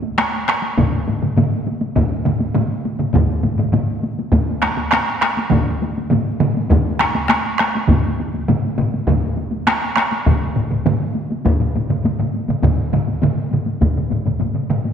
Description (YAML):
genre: japanese traditional, taiko drum ensemble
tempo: 101 BPM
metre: 4/4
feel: straight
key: none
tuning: none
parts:
  - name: taiko ensemble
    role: percussion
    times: 0.0-14.9 s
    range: none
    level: -23 LUFS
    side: equal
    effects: none
  - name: taiko ensemble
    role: percussion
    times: 0.2-14.8 s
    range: none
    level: -21 LUFS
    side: left 3 dB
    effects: none
  - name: taiko ensemble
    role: percussion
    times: 0.2-14.8 s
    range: none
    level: -21 LUFS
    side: right 4 dB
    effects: none
  - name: taiko ensemble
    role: percussion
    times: 0.8-14.0 s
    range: none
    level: -20 LUFS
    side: equal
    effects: none
room: wet scoring stage reverb, RT60 1.8 s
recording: none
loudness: -16 LUFS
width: side -8 dB against mid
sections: 0.0-13.8 A section; 13.8-14.9 B section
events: none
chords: none